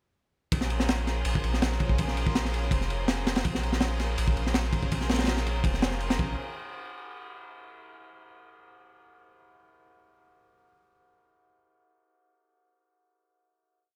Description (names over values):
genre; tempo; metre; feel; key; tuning
drum and bass, jungle; 164 BPM; 4/4; straight; Bb minor; A4 = 440 Hz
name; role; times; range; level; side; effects
lush unison pad; sustained chords; 0.5-6.3 s; Db4 to C5; -38 LUFS; equal; chorus
soft dub sub bass; bass; 0.5-6.4 s; F1 to Bb1; -32 LUFS; equal; none
crunchy breakbeat drum kit; drums; 0.5-6.3 s; kick drum, ride cymbal, snare drum; -30 LUFS; equal; none
room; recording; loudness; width
light reverb, small room ambience; none; -28 LUFS; mono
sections
0.5-6.4 drop; 6.4-7.8 final hit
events
drop 0.5-6.4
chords
0.5 Bbm7; 6.4 N.C.